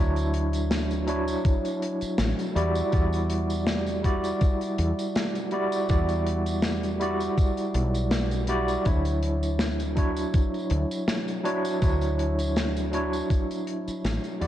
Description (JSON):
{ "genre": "vaporwave", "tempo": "81 BPM", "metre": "4/4", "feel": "swing 54% on 16ths", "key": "unclear", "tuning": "A4 = 440 Hz", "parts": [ { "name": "overdriven tine electric piano", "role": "accompaniment", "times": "0.0-14.5 s", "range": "F#3 to D5", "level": "-27 LUFS", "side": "right 1 dB", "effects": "fast tremolo, wide subtle chorus, analog delay" }, { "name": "woody fretless electric bass", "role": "bass", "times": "0.0-14.5 s", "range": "A1 to E2", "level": "-28 LUFS", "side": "equal", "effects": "none" }, { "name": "modern studio drum kit", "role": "drums", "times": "0.2-14.5 s", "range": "hi-hat, snare drum, tambourine", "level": "-31 LUFS", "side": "left 1 dB", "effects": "gated reverb" }, { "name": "electronic kick drum", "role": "drums", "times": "1.4-13.5 s", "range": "none", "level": "-23 LUFS", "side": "equal", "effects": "overdrive" } ], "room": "light reverb", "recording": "cassette tape", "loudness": "-23 LUFS", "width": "side -12 dB against mid", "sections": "0.0-14.5 A section", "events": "fade-out 12.8-14.5", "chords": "0.0 Dmaj9; 2.6 Em9; 8.9 Dmaj9" }